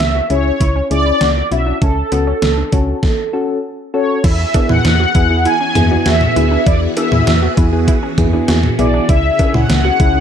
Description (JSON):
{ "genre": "synth-pop", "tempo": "99 BPM", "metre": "4/4", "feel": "straight", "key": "unclear", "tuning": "A4 = 440 Hz", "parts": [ { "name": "mellow synth brass", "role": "melody", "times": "0.0-10.2 s", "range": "A4 to G#5", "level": "-17 LUFS", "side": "equal", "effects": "chorus, phaser, analog delay" }, { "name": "wide unison pluck", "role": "arpeggios", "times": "0.0-10.2 s", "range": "B3 to F#4", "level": "-25 LUFS", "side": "right 3 dB", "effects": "analog delay" }, { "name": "solid FM bass", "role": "bass", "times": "0.0-10.2 s", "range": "B1 to E2", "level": "-16 LUFS", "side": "equal", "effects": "none" }, { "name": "gated 80s digital drum machine", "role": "drums", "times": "0.0-10.1 s", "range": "cowbell, crash cymbal, hi-hat, kick drum, snare drum, toms", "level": "-16 LUFS", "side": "equal", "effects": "gated reverb, gated reverb snare, overdrive" }, { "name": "soft electric-piano-like synth keys", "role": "accompaniment", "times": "0.3-10.2 s", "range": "B3 to A4", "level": "-20 LUFS", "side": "left 2 dB", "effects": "chorus" }, { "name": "phased string machine", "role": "sustained chords", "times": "4.2-10.2 s", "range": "C#3 to G#4", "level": "-21 LUFS", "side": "equal", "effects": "ensemble chorus, phaser" } ], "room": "moderate digital room reverb, RT60 1.1 s, digital ambience", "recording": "dark, warm production", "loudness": "-12 LUFS", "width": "side -8 dB against mid", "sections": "0.0-4.2 A section; 4.2-10.2 B section", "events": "stop 3.0-4.2", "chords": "0.0 C#m; 1.8 F#m/C#; 4.2 Eadd9; 9.1 C#m", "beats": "0.00 0.60 1.21 | 1.82 2.42 3.03 3.63 | 4.24 4.85 5.45 6.06 | 6.67 7.27 7.88 8.48 | 9.09 9.70" }